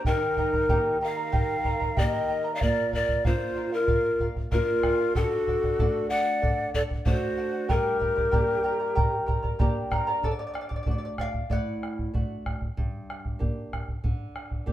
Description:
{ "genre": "andean folk, Andean ensemble", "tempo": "95 BPM", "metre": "4/4", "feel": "straight", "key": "G minor", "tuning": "A4 = 439 Hz", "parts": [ { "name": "breathy large quena", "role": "second line", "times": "0.0-9.6 s", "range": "Eb4 to D5", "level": "-32 LUFS", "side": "right 4 dB", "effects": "none" }, { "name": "charango", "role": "accompaniment", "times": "0.0-12.4 s", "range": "G4 to Bb5", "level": "-32 LUFS", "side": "right 1 dB", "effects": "none" }, { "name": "flamenco guitar", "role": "accompaniment", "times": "0.0-14.7 s", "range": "G2 to G4", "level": "-35 LUFS", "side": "right 1 dB", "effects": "none" }, { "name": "bombo", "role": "percussion", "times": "0.0-14.7 s", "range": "none", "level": "-28 LUFS", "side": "equal", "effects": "none" }, { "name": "breathy mellow large pan pipes", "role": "melody", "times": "0.1-9.6 s", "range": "A4 to F#5", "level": "-26 LUFS", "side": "left 2 dB", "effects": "none" } ], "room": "moderate stone room reverb, RT60 1.0 s", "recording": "band playing live in one room", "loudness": "-24 LUFS", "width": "side -13 dB against mid", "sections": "0.0-10.2 A section; 10.2-14.7 B section", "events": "charango solo 10.2-14.7", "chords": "0.1 Eb; 2.6 Bb; 5.2 D; 7.7 Gm; 10.2 D; 12.8 Gm" }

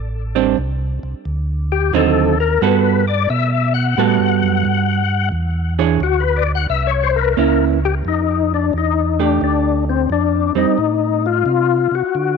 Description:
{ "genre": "soul jazz organ trio", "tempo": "88 BPM", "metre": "4/4", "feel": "swing 66% on 8ths", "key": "F major from 8.0 s", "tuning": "A4 = 440 Hz", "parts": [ { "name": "mellow tonewheel organ", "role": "bass", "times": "0.0-12.4 s", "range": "A1 to D3", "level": "-19 LUFS", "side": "right 1 dB", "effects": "slow rotary speaker" }, { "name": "vintage hollow-body jazz guitar", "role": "accompaniment", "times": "0.4-10.8 s", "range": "D3 to C#5", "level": "-18 LUFS", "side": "right 15 dB", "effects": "none" }, { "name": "percussive tonewheel organ", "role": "melody", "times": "1.7-12.4 s", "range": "C4 to F#5", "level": "-18 LUFS", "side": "left 12 dB", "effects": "slow rotary speaker, overdrive, chorus vibrato, tape echo" } ], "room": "light reverb, digital ambience", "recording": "1960s-style stereo with parts hard left and right", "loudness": "-14 LUFS", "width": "side -5 dB against mid", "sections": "0.0-8.0 A section; 8.0-12.4 B section", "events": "tonewheel organ solo 0.0-8.0", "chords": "0.0 Am7; 1.3 D7b9; 2.6 Gmaj9; 5.3 E6; 6.7 C7b9; 8.0 F69; 10.8 Am" }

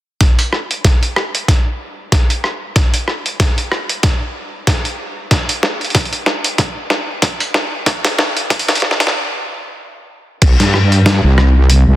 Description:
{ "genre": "glitch hop", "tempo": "94 BPM", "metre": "4/4", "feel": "swing 56% on 16ths", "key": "unclear", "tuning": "A4 = 440 Hz", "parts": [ { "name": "boom bap sampler-style drum kit", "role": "drums", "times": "0.2-11.8 s", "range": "crash cymbal, hi-hat, rim click, snare drum", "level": "-16 LUFS", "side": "equal", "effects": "high-pass filter on snare, high-pass filter on hats, high-pass filter on cymbals, high-pass filter on room" }, { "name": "electronic kick drum", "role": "drums", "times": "0.2-10.6 s", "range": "none", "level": "-14 LUFS", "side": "equal", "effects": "none" }, { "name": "wobble bass", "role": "bass", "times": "10.4-12.0 s", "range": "C2 to G2", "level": "-10 LUFS", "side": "equal", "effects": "chorus" } ], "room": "light reverb", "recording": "dense, heavily limited modern master, high-pass filter", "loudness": "-13 LUFS", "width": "side -14 dB against mid", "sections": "0.2-10.4 A section; 10.4-12.0 B section", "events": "build-up 0.2-10.4; drum fill 0.2-9.1; filter sweep 0.2-10.4; stop 9.1-10.4; drop 10.4-12.0", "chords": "none" }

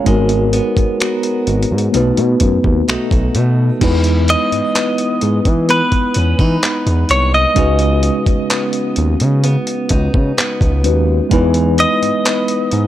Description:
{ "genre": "contemporary R&B", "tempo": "64 BPM", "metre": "4/4", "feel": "straight", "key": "unclear", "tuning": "A4 = 441 Hz", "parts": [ { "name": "mellow tine electric piano", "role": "accompaniment", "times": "0.0-12.9 s", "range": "Ab3 to Db5", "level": "-18 LUFS", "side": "left 1 dB", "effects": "medium stereo tremolo" }, { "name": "picked steel-string acoustic guitar", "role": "arpeggios", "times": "0.0-12.9 s", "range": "B2 to Bb4", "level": "-22 LUFS", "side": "right 1 dB", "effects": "tape echo" }, { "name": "smooth gliding synth bass", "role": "bass", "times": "0.1-12.9 s", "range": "Ab1 to E3", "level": "-15 LUFS", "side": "equal", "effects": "none" }, { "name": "dusty soul sampler-style drum kit", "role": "drums", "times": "0.1-12.9 s", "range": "crash cymbal, finger snaps, handclaps, hi-hat, kick drum", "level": "-18 LUFS", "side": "equal", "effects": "none" }, { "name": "direct-recorded clean electric guitar", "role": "melody", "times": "4.3-12.9 s", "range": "B4 to D#5", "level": "-17 LUFS", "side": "equal", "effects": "tape echo" } ], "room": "little or no reverb", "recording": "dry, gritty hardware recording", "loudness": "-12 LUFS", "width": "side -12 dB against mid", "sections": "0.0-3.8 A section; 3.8-12.9 B section", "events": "none", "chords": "0.1 Abm9; 1.9 B7; 3.8 Emaj7; 7.6 Db9sus4; 11.3 Emaj7" }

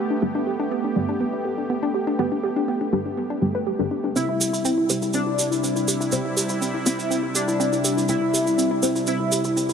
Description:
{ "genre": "melodic techno", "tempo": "122 BPM", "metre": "4/4", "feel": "straight", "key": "unclear", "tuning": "A4 = 440 Hz", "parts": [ { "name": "sweeping resonant pad", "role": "sustained chords", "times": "0.0-9.7 s", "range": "C3 to G4", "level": "-26 LUFS", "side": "right 1 dB", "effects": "chorus" }, { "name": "woody wave-folded pluck", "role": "arpeggios", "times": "0.0-9.7 s", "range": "B3 to B4", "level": "-26 LUFS", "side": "equal", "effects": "chorus, dub echo" }, { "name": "filtered dub chord stab", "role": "stabs", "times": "0.0-9.7 s", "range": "G3 to C5", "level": "-29 LUFS", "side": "left 2 dB", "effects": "phaser, wide subtle chorus, dub echo" }, { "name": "resonant sweep polysynth", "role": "melody", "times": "4.2-9.7 s", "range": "D4 to E4", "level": "-24 LUFS", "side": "left 2 dB", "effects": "chorus, ping-pong delay" }, { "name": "cabasa", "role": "percussion", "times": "4.2-9.7 s", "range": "none", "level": "-27 LUFS", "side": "right 4 dB", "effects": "none" } ], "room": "moderate huge ambient reverb, RT60 7.0 s", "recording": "none", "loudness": "-20 LUFS", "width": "side -7 dB against mid", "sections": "0.0-9.7 A section", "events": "filter sweep on synth stab 0.0-9.7", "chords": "0.0 Gadd9; 4.2 C" }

